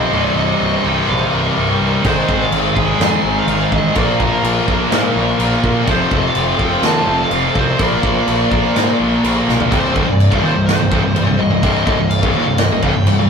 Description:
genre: heavy metal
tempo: 125 BPM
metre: 4/4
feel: straight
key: C minor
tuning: A4 = 440 Hz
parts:
  - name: high-gain lead guitar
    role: melody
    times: 0.0-13.3 s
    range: Bb4 to A5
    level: -21 LUFS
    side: equal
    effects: distortion
  - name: heavy high-gain guitar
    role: riff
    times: 0.0-13.3 s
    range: C2 to Bb4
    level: -20 LUFS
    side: right 2 dB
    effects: distortion
  - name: high-gain distorted guitar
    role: riff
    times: 0.0-13.3 s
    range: C2 to Bb3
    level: -19 LUFS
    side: left 4 dB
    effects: distortion
  - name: scooped high-gain guitar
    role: riff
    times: 0.0-13.3 s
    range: C2 to Bb3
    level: -21 LUFS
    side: right 4 dB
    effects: distortion
  - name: fuzz picked electric bass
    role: bass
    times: 0.0-13.3 s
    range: C1 to Bb2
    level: -21 LUFS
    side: equal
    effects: overdrive
  - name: modern studio drum kit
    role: drums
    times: 2.0-13.2 s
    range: crash cymbal, kick drum, snare drum, toms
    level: -19 LUFS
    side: left 1 dB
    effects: none
room: wet booth ambience, RT60 0.2 s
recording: rough rehearsal-room recording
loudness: -13 LUFS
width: side -6 dB against mid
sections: 0.0-9.7 A section; 9.7-13.3 B section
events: drum fill 9.5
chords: 0.1 Cm; 2.0 Ab; 4.0 Bb; 5.9 F; 7.8 Bb; 9.7 Cm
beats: | 0.12 0.59 1.07 1.55 | 2.03 2.51 2.99 3.47 | 3.95 4.43 4.91 5.39 | 5.87 6.35 6.83 7.31 | 7.79 8.27 8.75 9.23 | 9.71 10.19 10.67 11.15 | 11.63 12.11 12.58 13.06

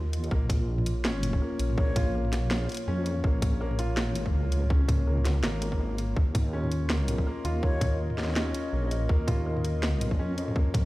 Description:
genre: half-time drum and bass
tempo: 164 BPM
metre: 4/4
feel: swing 57% on 16ths, half-time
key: Bb minor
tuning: A4 = 441 Hz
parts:
  - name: dark analog pad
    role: sustained chords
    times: 0.0-10.9 s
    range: Bb3 to Eb5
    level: -37 LUFS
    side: left 1 dB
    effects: chorus, vintage 12-bit sampler grit, sidechain pumping
  - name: deep soft wobble bass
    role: bass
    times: 0.0-10.9 s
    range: Ab1 to F2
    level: -28 LUFS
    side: equal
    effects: chorus
  - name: drum and bass drum kit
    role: drums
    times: 0.1-10.8 s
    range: hi-hat, snare drum, toms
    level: -32 LUFS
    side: equal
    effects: overdrive, studio reverb
  - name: felt-muted upright piano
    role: arpeggios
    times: 0.3-10.9 s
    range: Bb3 to F4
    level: -35 LUFS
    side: equal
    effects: tape echo
  - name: electronic kick drum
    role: drums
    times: 0.3-10.8 s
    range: none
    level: -26 LUFS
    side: equal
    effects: overdrive, studio reverb
  - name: breathy jazz flute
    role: melody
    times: 1.8-2.1, 7.6-8.0 s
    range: Db5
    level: -40 LUFS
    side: left 2 dB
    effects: vintage 12-bit sampler grit, tape echo
room: digital ambience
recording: played on a big sound system in a bare room, stone room reverb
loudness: -25 LUFS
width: side -18 dB against mid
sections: 0.0-10.9 A section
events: none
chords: 0.3 Bbm; 6.2 Ebsus2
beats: | 0.31 0.68 1.04 1.41 | 1.78 2.14 2.51 2.87 | 3.24 3.61 3.97 4.34 | 4.70 5.07 5.43 5.80 | 6.17 6.53 6.90 7.26 | 7.63 8.00 8.36 8.73 | 9.09 9.46 9.82 10.19 | 10.56

